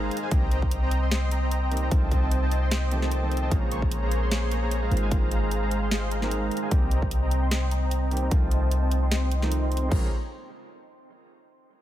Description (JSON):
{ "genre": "future bass", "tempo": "150 BPM", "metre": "4/4", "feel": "swing 54% on 16ths, half-time", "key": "Bb dorian", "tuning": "A4 = 439 Hz", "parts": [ { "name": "warm grand piano", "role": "accompaniment", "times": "0.0-10.1 s", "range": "Db3 to A4", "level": "-35 LUFS", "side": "right 4 dB", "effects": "sidechain pumping, tape echo" }, { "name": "soft supersaw", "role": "riff", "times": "0.0-10.1 s", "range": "Ab3 to Db6", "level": "-30 LUFS", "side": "equal", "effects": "sidechain pumping, low-pass filter, tape echo" }, { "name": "warm 808-style bass", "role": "bass", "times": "0.0-10.1 s", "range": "Ab1 to C2", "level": "-25 LUFS", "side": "equal", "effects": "sidechain pumping" }, { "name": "trap drum kit", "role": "drums", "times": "0.1-10.0 s", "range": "crash cymbal, hi-hat, snare drum", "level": "-32 LUFS", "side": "equal", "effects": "none" }, { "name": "electronic kick drum", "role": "drums", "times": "0.3-10.0 s", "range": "none", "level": "-25 LUFS", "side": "equal", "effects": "overdrive" } ], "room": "little or no reverb", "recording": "none", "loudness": "-22 LUFS", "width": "side -13 dB against mid", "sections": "0.0-9.9 A section; 9.9-11.5 B section", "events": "filter sweep on supersaw synth 0.0-9.9", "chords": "0.3 Cm7; 1.9 F7/C; 3.5 Bbm9; 4.9 Ab69; 6.7 Cm7; 8.3 F7/C; 9.9 Bbm9" }